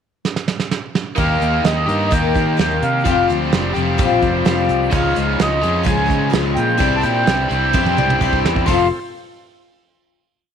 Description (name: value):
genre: folk rock and heartland rock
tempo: 128 BPM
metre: 4/4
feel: straight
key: unclear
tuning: A4 = 443 Hz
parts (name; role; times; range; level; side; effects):
- soft brush drum kit; drums; 0.2-8.8 s; hi-hat, kick drum, snare drum, toms; -20 LUFS; right 4 dB; none
- mellow accordion; melody; 1.2-8.9 s; Eb5 to C6; -21 LUFS; right 1 dB; none
- picked twelve-string acoustic guitar; accompaniment; 1.2-8.9 s; F2 to D5; -20 LUFS; left 10 dB; none
- bright tonewheel organ; sustained chords; 1.2-9.0 s; Bb3 to Db5; -29 LUFS; right 1 dB; none
- overdriven electric guitar; riff; 1.2-8.9 s; F2 to G4; -21 LUFS; right 1 dB; none
- fingered electric bass; bass; 1.2-8.9 s; F1 to Eb3; -21 LUFS; right 1 dB; none
room: light reverb, small room ambience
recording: 1960s-style stereo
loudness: -14 LUFS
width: side -8 dB against mid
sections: 0.0-1.2 pickup bar; 1.2-8.7 pre-chorus; 8.7-10.5 final chord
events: drum fill 0.2-1.2, 7.7-8.7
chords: 0.0 N.C.; 1.2 Eb; 3.0 Fsus2; 4.9 Dbadd9; 6.8 Cadd9; 8.7 F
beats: 0.24 0.71 | 1.18 1.65 2.11 2.58 | 3.05 3.52 3.98 4.45 | 4.92 5.39 5.86 6.32 | 6.79 7.26 7.73 8.20 | 8.67